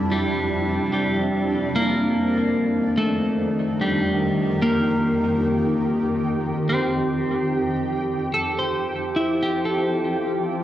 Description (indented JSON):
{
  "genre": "ambient",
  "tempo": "73 BPM",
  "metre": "4/4",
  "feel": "straight",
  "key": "unclear",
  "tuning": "A4 = 436 Hz",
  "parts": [
    { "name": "shimmering ambient pad", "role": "sustained chords", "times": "0.0-10.6 s", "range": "F2 to A4", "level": "-24 LUFS", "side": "right 1 dB", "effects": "chorus, built-in reverb, cassette tape" },
    { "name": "twelve-string electric guitar", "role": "arpeggios", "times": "0.1-10.6 s", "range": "G3 to C5", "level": "-22 LUFS", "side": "left 1 dB", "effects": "cassette tape, analog delay" }
  ],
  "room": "wet spring reverb, RT60 1.4 s",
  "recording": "home recording on cassette, nothing above 10.5 kHz",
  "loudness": "-20 LUFS",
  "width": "side -12 dB against mid",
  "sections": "0.0-7.9 A section; 7.9-10.6 B section",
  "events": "none",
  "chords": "0.0 C/F; 1.3 Ebmaj9/F; 7.9 Fmaj9"
}